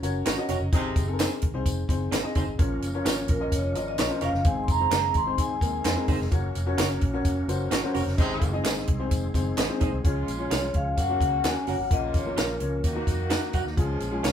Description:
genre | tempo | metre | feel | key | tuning
uptempo 1960s-style soul | 129 BPM | 4/4 | straight | unclear | A4 = 440 Hz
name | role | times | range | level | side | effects
clear upright piano | accompaniment | 0.0-14.3 s | Ab3 to Eb5 | -31 LUFS | left 3 dB | none
vintage muted fingered electric bass | bass | 0.0-14.3 s | F1 to Ab2 | -31 LUFS | equal | tube saturation
compact cocktail drum kit | drums | 0.0-14.3 s | hi-hat, kick drum, snare drum | -26 LUFS | equal | none
tambourine and handclaps | percussion | 0.0-14.3 s | none | -37 LUFS | left 2 dB | none
electric guitar through a small old amp | stabs | 0.3-14.3 s | C4 to Gb5 | -32 LUFS | right 6 dB | none
warm horn section | second line | 0.7-1.1, 8.2-14.3 s | C3 to Ab4 | -35 LUFS | right 2 dB | none
bright tonewheel organ | sustained chords | 2.6-14.3 s | Eb3 to Gb4 | -36 LUFS | right 1 dB | slow rotary speaker, overdrive
vibraphone with medium mallets | melody | 3.3-6.1, 10.5-13.3 s | Bb4 to C6 | -28 LUFS | left 1 dB | none
room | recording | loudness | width
moderate studio reverb, RT60 0.6 s | band playing live in one room | -23 LUFS | side -9 dB against mid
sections
0.0-10.0 A section; 10.0-14.3 B section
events
band accent 0.7-2.6, 8.2-10.0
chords
0.0 Gb; 0.7 Ab; 2.6 Bbm; 4.5 Ab; 6.3 Gb; 8.2 Ab; 10.0 Db; 11.0 Gb; 11.9 Bbm; 12.8 Ebm; 13.8 Db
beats
0.26 | 0.73 1.20 1.66 2.13 | 2.59 3.06 3.52 3.99 | 4.46 4.92 5.39 5.85 | 6.32 6.79 7.25 7.72 | 8.18 8.65 9.11 9.58 | 10.04 10.51 10.98 11.44 | 11.91 12.38 12.84 13.31 | 13.78 14.24

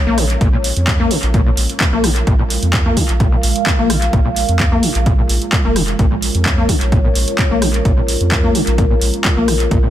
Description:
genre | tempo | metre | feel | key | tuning
acid house | 129 BPM | 4/4 | straight | Bb minor | A4 = 437 Hz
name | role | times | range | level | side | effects
dark analog pad | sustained chords | 0.0-9.9 s | Ab3 to F5 | -22 LUFS | right 1 dB | chorus, phaser, sidechain pumping
overdriven acid bass | riff | 0.1-9.9 s | Bb2 to Bb3 | -19 LUFS | left 2 dB | distortion, lush chorus, sidechain pumping, dub echo
round analog bass | bass | 0.1-9.9 s | F1 to F2 | -18 LUFS | equal | sidechain pumping
punchy analog drum machine | drums | 0.2-9.8 s | handclaps, hi-hat, rim click | -20 LUFS | right 1 dB | tape echo
electronic kick drum | drums | 0.4-9.8 s | none | -16 LUFS | equal | none
room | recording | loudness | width
light reverb, digital ambience | echo-heavy mix | -12 LUFS | side -12 dB against mid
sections
0.0-9.9 A section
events
filter sweep on acid bass 0.0-9.9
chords
0.0 Bbm7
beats
| 0.41 0.88 1.34 1.80 | 2.27 2.74 3.20 3.67 | 4.13 4.60 5.06 5.53 | 5.99 6.46 6.92 7.39 | 7.85 8.32 8.78 9.25 | 9.71

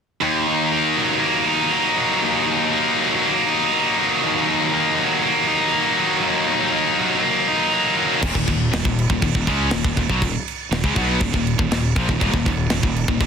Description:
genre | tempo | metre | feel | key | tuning
heavy metal | 120 BPM | 4/4 | straight | Eb minor | A4 = 441 Hz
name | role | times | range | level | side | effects
heavy high-gain guitar | riff | 0.2-13.3 s | Eb2 to Eb4 | -21 LUFS | right 10 dB | distortion
tight distorted guitar | riff | 0.2-13.3 s | Eb2 to Eb4 | -21 LUFS | left 10 dB | distortion
distorted electric guitar | riff | 8.2-13.3 s | Eb2 to Db4 | -27 LUFS | equal | distortion
fuzz fingered electric bass | bass | 8.2-13.3 s | Eb1 to Db2 | -24 LUFS | equal | overdrive
tight metal drum kit | drums | 8.2-13.3 s | crash cymbal, kick drum, snare drum | -22 LUFS | equal | none
room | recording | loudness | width
light reverb, studio reverb | dense, heavily limited modern master | -17 LUFS | side -6 dB against mid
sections
0.2-8.2 A section; 8.2-13.3 B section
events
none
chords
0.2 Ebm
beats
| 0.22 0.72 1.22 1.72 | 2.22 2.72 3.23 3.73 | 4.23 4.73 5.23 5.73 | 6.23 6.73 7.23 7.73 | 8.23 8.73 9.22 9.72 | 10.22 10.72 11.21 11.71 | 12.21 12.71 13.21

